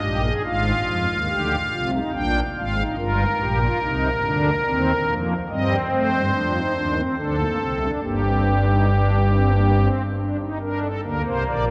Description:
classical, baroque-style 3-part fugue for pipe organ; 71 BPM; 3/4; straight; Eb major, G minor from 5.5 s; A4 = 440 Hz
pipe organ, strings celeste; solo; 0.0-11.7 s; G1 to G5; -22 LUFS; equal
wet cathedral reverb, RT60 4.7 s; -22 LUFS; mono
0.5-10.6 A section; 10.6-11.7 B section
0.5 Fm/Ab; 2.1 Bb7; 3.0 Eb/G; 4.7 Eb5; 5.5 Cm/G; 7.2 D5; 8.0 Gm; 10.6 Bbmaj9
| 0.46 1.30 2.15 | 2.99 3.83 4.66 | 5.50 6.34 7.18 | 8.04 8.89 9.75 | 10.61 11.47

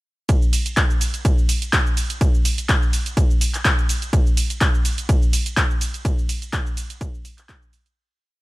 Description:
house; 125 BPM; 4/4; swing 54% on 16ths
electronic kick drum; drums; 0.3-7.6 s; -18 LUFS; equal
punchy analog drum machine; drums; 0.3-8.0 s; handclaps, hi-hat, ride cymbal, shaker; -23 LUFS; equal
little or no reverb; -17 LUFS; side -20 dB against mid
0.3-8.0 drop
drop 0.3-8.0; fade-out 5.4-8.0
| 0.29 0.77 1.25 1.73 | 2.21 2.69 3.17 3.65 | 4.13 4.61 5.09 5.57 | 6.05 6.53 7.01 7.49

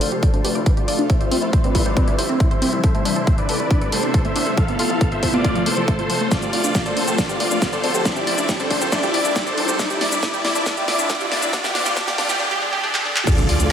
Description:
uplifting trance; 138 BPM; 4/4; straight; A4 = 440 Hz
big supersaw lead; melody; 0.0-13.7 s; D4 to F5; -24 LUFS; equal; sidechain pumping, low-pass filter, tape echo
tight sequenced synth; arpeggios; 0.0-13.3 s; F3 to D5; -25 LUFS; right 1 dB; chorus, phaser, sidechain pumping, tape echo
fat analog bass; bass; 0.0-13.7 s; F1 to D2; -31 LUFS; equal
big-room dance drum kit; drums; 0.0-13.7 s; crash cymbal, handclaps, hi-hat, shaker, snare drum; -24 LUFS; left 1 dB; studio reverb
riser and impact; sound effects; 4.4-13.7 s; -29 LUFS; right 1 dB
electronic kick drum; drums; 0.2-13.4 s; -19 LUFS; equal; studio reverb
wet lush hall reverb, RT60 2.0 s; dreamy mix soaked in reverb, high-pass filter; -17 LUFS; side -8 dB against mid
0.0-13.3 A section
build-up 0.0-13.3; filter sweep on supersaw synth 0.0-13.3; filter sweep on synth arpeggio sound 0.0-13.3; filter sweep 0.0-13.3; riser 4.4-13.3; drum fill 6.3-12.4, 12.9-13.3; impact 13.3-13.7
0.0 Dm; 1.1 C; 2.8 Amadd9; 4.6 F; 6.3 Dm; 8.1 C; 9.8 Amadd9; 11.5 F
0.23 0.66 | 1.10 1.53 1.97 2.40 | 2.84 3.27 3.71 4.14 | 4.58 5.01 5.45 5.88 | 6.32 6.75 7.18 7.62 | 8.05 8.49 8.92 9.36 | 9.79 10.23 10.66 11.10 | 11.53 11.97 12.40 12.84 | 13.27 13.71

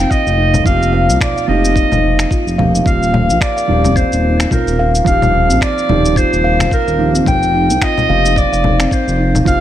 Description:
organic downtempo; 109 BPM; 4/4; swing 57% on 16ths; A4 = 439 Hz
warm clarinet; melody; 0.0-9.6 s; Bb4 to G5; -17 LUFS; equal; ping-pong delay
felt-muted upright piano; accompaniment; 0.0-9.6 s; F3 to G4; -21 LUFS; right 6 dB; sidechain pumping
steel tongue drum; arpeggios; 0.0-9.6 s; C4 to F5; -18 LUFS; left 1 dB; ping-pong delay
smooth synth bass; bass; 0.0-9.6 s; Eb1 to C2; -16 LUFS; equal; sidechain pumping
electronic shaker, congas and finger snaps; drums; 0.0-9.6 s; -20 LUFS; left 2 dB; small room ambience
electronic kick drum; drums; 0.1-9.6 s; -17 LUFS; equal; small room ambience
light reverb, studio reverb; -11 LUFS; side -11 dB against mid
0.0-9.6 A section
0.0 Fsus2; 2.9 Ebmaj9; 7.3 F7sus2
0.11 | 0.66 1.21 1.76 2.31 | 2.86 3.41 3.96 4.51 | 5.06 5.61 6.16 6.71 | 7.26 7.82 8.37 8.92 | 9.47

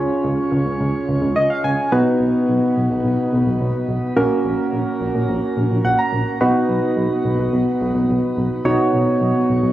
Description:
synth-pop; 107 BPM; 4/4; straight; A4 = 441 Hz
soft electric-piano-like synth keys; accompaniment; 0.0-9.7 s; Bb3 to Bb5; -18 LUFS; right 1 dB; chorus, shimmer reverb
chorused synth bass; bass; 0.0-9.7 s; Bb1 to Db2; -21 LUFS; equal
moderate plate reverb, RT60 2.7 s; recorded on a phone in the room, club reverb, compression; -16 LUFS; side -14 dB against mid
0.0-9.7 A section
synth keys fill 1.1-1.9, 5.6-6.4
0.0 Db; 1.9 Cb; 4.2 Gb/Bb; 6.4 Cb
0.24 0.80 1.36 | 1.92 2.48 3.04 3.60 | 4.17 4.72 5.29 5.85 | 6.41 6.97 7.53 8.09 | 8.65 9.21

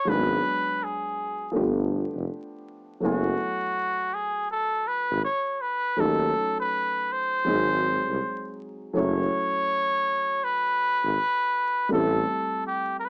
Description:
hip hop, jazz-hop; 81 BPM; 4/4; swing 61% on 16ths; A4 = 440 Hz
trumpet with cup mute; melody; 0.0-13.1 s; F#4 to C#5; -27 LUFS; equal; cassette tape
dark upright piano; accompaniment; 0.0-13.1 s; F3 to G#5; -32 LUFS; equal
mellow tuba; bass; 0.1-12.2 s; F1 to D#2; -29 LUFS; equal
moderate small room reverb, RT60 0.6 s; home recording on cassette, vinyl crackle, small speaker sound; -26 LUFS; mono
0.0-9.0 A section; 9.0-13.1 B section
0.1 G#m7b5; 1.5 G9; 3.0 F#m11; 6.0 D#m7b5; 7.5 G#7; 9.0 F#m7; 11.9 Am7
| 0.06 0.80 1.54 2.29 | 3.03 3.77 4.51 5.25 | 5.99 6.73 7.47 8.21 | 8.95 9.69 10.43 11.17 | 11.91 12.65

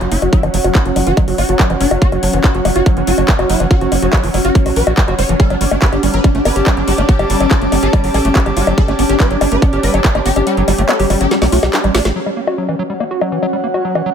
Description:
psychedelic trance; 142 BPM; 4/4; straight; A4 = 440 Hz
swarming rave lead; melody; 0.0-12.1 s; F#3 to C#5; -20 LUFS; equal; chorus, phaser, sidechain pumping, tape echo
evolving wavetable pad; sustained chords; 0.0-14.1 s; C#4; -20 LUFS; equal; chorus, built-in reverb, phaser, sidechain pumping
overdriven acid bass; riff; 0.0-14.1 s; E3 to G4; -21 LUFS; right 1 dB; auto-pan, sidechain pumping, tape echo
tight sequencer bass; bass; 0.0-12.1 s; F#1 to B1; -17 LUFS; equal
garage drum kit; drums; 0.0-14.0 s; bongos, handclaps, hi-hat, snare drum; -19 LUFS; left 2 dB; small room ambience
airy breathy pad; texture; 0.0-14.1 s; F#4 to D6; -23 LUFS; equal; chorus, sidechain pumping
electronic kick drum; drums; 0.3-10.1 s; -11 LUFS; equal; small room ambience
light reverb; -11 LUFS; side -8 dB against mid
0.0-12.2 A section; 12.2-14.1 B section
filter sweep on acid bass 0.0-12.2; kick drops out 10.5-12.2; drum fill 11.3-12.2; band accent 12.1
0.0 F#5; 5.4 G5; 12.2 F#5
| 0.33 0.75 1.17 1.59 | 2.02 2.44 2.86 3.28 | 3.71 4.13 4.55 4.97 | 5.40 5.82 6.24 6.67 | 7.09 7.51 7.93 8.36 | 8.78 9.20 9.62 10.04 | 10.47 10.89 11.31 11.73 | 12.16 12.58 13.00 13.43 | 13.85

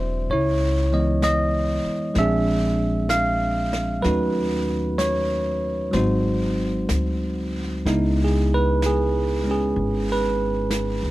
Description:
jazz; 64 BPM; 4/4; swing 68% on 8ths; C# minor; A4 = 435 Hz
bell-like tine electric piano; accompaniment; 0.0-11.1 s; E3 to E#5; -21 LUFS; right 1 dB
upright bass; bass; 0.0-11.1 s; E1 to D#2; -25 LUFS; equal
jazz brush drum kit; drums; 0.3-11.1 s; brushed snare drum, hi-hat, snare drum; -34 LUFS; equal
little or no reverb; dry, close 1970s-style studio recording; -20 LUFS; side -16 dB against mid
0.0-7.9 A section; 7.9-11.1 B section
0.3 C#m9; 2.2 A#7; 4.0 D#m7b5; 5.9 G#7; 7.9 C#m9
| 0.29 1.22 2.16 3.09 | 4.04 4.98 5.93 6.89 | 7.86 8.82 9.77 10.71

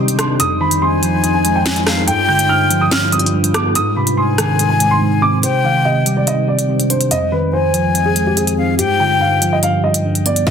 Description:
hip hop, drill; 143 BPM; 4/4; half-time; C harmonic minor; A4 = 440 Hz
dark concert grand piano; melody; 0.0-10.5 s; G4 to G6; -19 LUFS; right 2 dB; low-pass filter, tape echo
mellow tine electric piano; accompaniment; 0.0-10.5 s; F2 to D4; -17 LUFS; right 1 dB; low-pass filter
deep dark ambient pad; sustained chords; 0.0-10.4 s; F4 to C5; -22 LUFS; left 2 dB; chorus, built-in reverb
short 808-style bass; bass; 0.0-5.0 s; barely audible
drill drum kit; drums; 0.1-10.5 s; hi-hat, kick drum, rim click, snare drum; -18 LUFS; equal; soft clipping on kick
breathy concert flute; second line; 0.8-9.6 s; F5 to Ab5; -20 LUFS; left 6 dB; tape echo
moderate digital room reverb, RT60 1.1 s; dense, heavily limited modern master; -12 LUFS; side -7 dB against mid
0.0-5.4 A section; 5.4-10.5 B section
drums muted 5.0-5.4
0.4 Fm7; 2.1 G7; 3.8 Ab; 5.4 Cmadd9; 7.1 Fm7; 8.8 G7
| 0.40 0.82 1.24 1.66 | 2.08 2.50 2.92 3.33 | 3.75 4.17 4.59 5.01 | 5.43 5.85 6.27 6.69 | 7.11 7.53 7.95 8.37 | 8.79 9.21 9.63 10.05 | 10.47

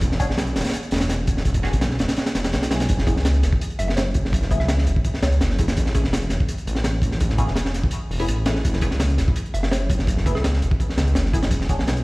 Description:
drum and bass, jungle; 167 BPM; 4/4; straight; F# minor; A4 = 440 Hz
detuned saw bass; bass; 0.0-12.0 s; D1 to C#2; -22 LUFS; equal
crunchy breakbeat drum kit; drums; 0.0-12.0 s; hi-hat, kick drum, snare drum; -21 LUFS; equal
filtered dub chord stab; stabs; 0.2-11.8 s; A3 to G#4; -32 LUFS; left 1 dB; phaser, lush chorus, vintage 12-bit sampler grit, dub echo
hollow square pluck; melody; 3.8-5.6, 9.5-10.7 s; A4 to E5; -34 LUFS; equal; chorus, dub echo
small room ambience; played on a big sound system in a bare room, stone room reverb, vinyl crackle; -19 LUFS; side -24 dB against mid
0.0-12.0 A section
0.0 E; 2.9 F#m11; 5.8 Amaj7sus2; 8.6 F#m11; 11.5 E13
| 0.02 0.38 0.73 1.09 | 1.45 1.81 2.17 2.53 | 2.89 3.25 3.61 3.97 | 4.33 4.69 5.05 5.41 | 5.76 6.12 6.48 6.84 | 7.20 7.56 7.92 8.28 | 8.64 9.00 9.36 9.72 | 10.08 10.44 10.79 11.15 | 11.51 11.87

